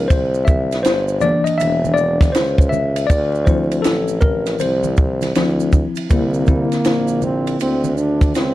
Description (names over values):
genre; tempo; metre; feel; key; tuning
hip hop, jazz-hop; 80 BPM; 4/4; swing 63% on 16ths; unclear; A4 = 440 Hz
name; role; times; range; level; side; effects
mellow tine electric piano; accompaniment; 0.0-7.7 s; D3 to E5; -19 LUFS; left 2 dB; medium stereo tremolo, plate reverb
clear tuba; bass; 0.0-8.5 s; E1 to D2; -21 LUFS; equal; none
compact cocktail drum kit; drums; 0.1-8.5 s; hi-hat, kick drum, ride cymbal, snare drum; -17 LUFS; equal; none
maracas and congas; percussion; 0.1-8.5 s; none; -31 LUFS; right 7 dB; none
breathy trombone; melody; 6.1-8.5 s; Bb3 to D4; -21 LUFS; right 2 dB; plate reverb
room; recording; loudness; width
light reverb; dark, warm production, vinyl crackle; -14 LUFS; side -15 dB against mid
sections
0.0-6.1 A section; 6.1-8.5 B section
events
tine electric piano solo 0.0-6.1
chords
0.1 C9; 3.1 Dm9; 6.1 C9